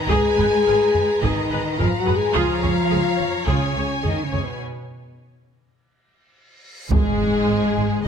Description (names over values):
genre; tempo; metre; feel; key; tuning
cinematic, epic orchestral film score; 106 BPM; 4/4; straight; unclear; A4 = 439 Hz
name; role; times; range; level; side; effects
warm symphonic violin section; melody; 0.0-8.1 s; G#4 to G#5; -30 LUFS; left 2 dB; none
warm symphonic violin section; second line; 0.0-8.1 s; G#4 to A#5; -28 LUFS; equal; none
mellow French horn section; sustained chords; 0.0-8.1 s; G#3 to G#4; -22 LUFS; left 5 dB; none
warm symphonic cello section; bass; 0.0-8.1 s; G#2 to G#3; -27 LUFS; right 4 dB; none
warm symphonic viola section; accompaniment; 0.1-8.0 s; G#3 to C#5; -26 LUFS; right 3 dB; none
warm symphonic double bass section; bass; 0.1-8.1 s; G#1 to C#2; -26 LUFS; right 5 dB; none
taiko ensemble; drums; 0.1-7.4 s; none; -25 LUFS; equal; none
reverse cymbal and impact; sound effects; 6.7-8.1 s; none; -32 LUFS; equal; none
room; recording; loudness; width
light reverb; close, detailed microphones; -18 LUFS; side -7 dB against mid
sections
0.0-6.9 A section; 6.9-8.1 B section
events
break 4.6-6.9; drum fill 6.1-6.9; reverse cymbal 6.7; impact 6.9-8.1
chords
0.0 G#madd9; 2.4 C#; 4.6 N.C.